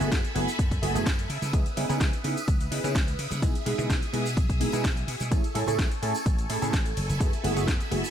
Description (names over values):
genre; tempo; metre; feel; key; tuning
filtered disco house; 127 BPM; 4/4; straight; unclear; A4 = 440 Hz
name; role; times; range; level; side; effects
funky polysynth comp; accompaniment; 0.0-8.0 s; G#3 to A4; -30 LUFS; right 2 dB; chorus, phaser, sidechain pumping
phased string machine; sustained chords; 0.0-8.1 s; G#4 to D#6; -35 LUFS; equal; ensemble chorus, phaser, vintage 12-bit sampler grit, sidechain pumping
slap bass; bass; 0.0-8.0 s; F#1 to C#3; -31 LUFS; equal; tube saturation, sidechain pumping
house drum kit; drums; 0.0-8.1 s; hi-hat, ride cymbal, shaker, snare drum; -34 LUFS; equal; overdrive, sidechain pumping on hats, sidechain pumping on cymbals, sidechain pumping on perc
congas and tambourine; percussion; 0.0-8.1 s; none; -39 LUFS; right 3 dB; sidechain pumping on perc
electronic kick drum; drums; 0.1-7.8 s; none; -26 LUFS; equal; overdrive
room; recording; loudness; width
digital ambience; none; -24 LUFS; side -9 dB against mid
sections
0.0-8.1 A section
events
none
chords
0.0 F#m11; 1.3 C#m9; 3.4 Emaj7/B; 5.3 Amaj7; 7.0 F#m11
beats
0.12 0.59 1.06 | 1.54 2.01 2.48 2.95 | 3.42 3.90 4.37 4.84 | 5.32 5.79 6.26 6.73 | 7.21 7.68